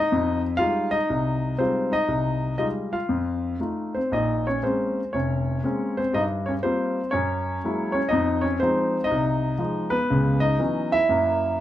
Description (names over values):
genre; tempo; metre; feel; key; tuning
solo jazz; 120 BPM; 4/4; swing 68% on 8ths, rubato; F minor, Bb minor from 4.1 s; A4 = 438 Hz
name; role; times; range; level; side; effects
warm baby grand piano; solo; 0.0-11.6 s; F1 to F5; -21 LUFS; left 1 dB; none
room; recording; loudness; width
light reverb; lossy compression artefacts; -22 LUFS; side -12 dB against mid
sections
0.0-4.1 A section; 4.1-11.6 B section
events
none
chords
0.1 Fm9; 3.1 F7; 4.1 Bbm9; 6.1 Gm7; 7.1 Gb9; 8.1 Fm7; 10.1 Dbm11